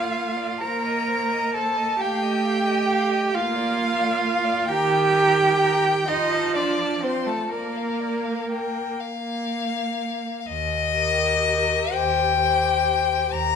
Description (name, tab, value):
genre	classical, slow romantic movement for string quartet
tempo	38-46 BPM (dotted quarters)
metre	6/8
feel	rubato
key	Bb major, Eb major from 10.5 s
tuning	A4 = 440 Hz
part	rich violin	melody	0.0-13.6 s	C5 to C6	-26 LUFS	left 8 dB	none
part	rich violin	second line	0.0-13.3 s	A4 to Bb5	-27 LUFS	left 2 dB	none
part	rich viola	accompaniment	0.0-13.3 s	Eb3 to G4	-29 LUFS	right 3 dB	none
part	rich cello	bass	0.0-13.6 s	Eb2 to Bb4	-24 LUFS	right 4 dB	none
room	moderate recital hall reverb, RT60 1.5 s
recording	minimal, uncompressed stereo recording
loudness	-20 LUFS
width	side -7 dB against mid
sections	0.0-10.5 A section; 10.5-13.6 B section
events	none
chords	0.0 Bb; 0.6 Cm7/Bb; 2.0 F7/A; 3.3 Bb; 4.7 Eb; 6.1 F7; 7.5 Bb5; 10.5 Eb